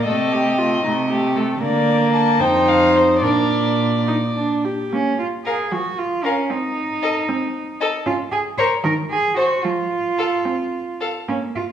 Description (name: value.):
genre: quick classical-period movement for string quartet.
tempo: 69-78 BPM (dotted quarters).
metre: 6/8.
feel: rubato.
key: Bb major, Bb minor from 4.9 s.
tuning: A4 = 440 Hz.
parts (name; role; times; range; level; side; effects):
dark violin; melody; 0.0-11.1 s; Bb4 to A5; -23 LUFS; left 4 dB; none.
dark violin; second line; 0.0-11.1 s; Eb4 to D5; -22 LUFS; left 1 dB; none.
warm viola; accompaniment; 0.0-11.7 s; Eb3 to G4; -22 LUFS; right 2 dB; none.
rich cello; bass; 0.1-11.6 s; F2 to C5; -22 LUFS; right 2 dB; none.
room: wet recital hall reverb, RT60 1.5 s.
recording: studio reverb.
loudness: -17 LUFS.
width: side -9 dB against mid.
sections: 0.0-4.9 A section; 4.9-11.7 B section.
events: none.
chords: 0.1 Adim/C; 1.6 Bb/D; 2.4 F5; 3.2 Bb; 4.9 Bbm; 6.5 Adim/C (rootless); 8.1 N.C.; 8.8 Cdim/Eb; 9.6 F5.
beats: | 0.07 0.84 | 1.61 2.39 | 3.23 4.07 | 4.92 5.72 | 6.51 7.29 | 8.06 8.84 | 9.65 10.46 | 11.28.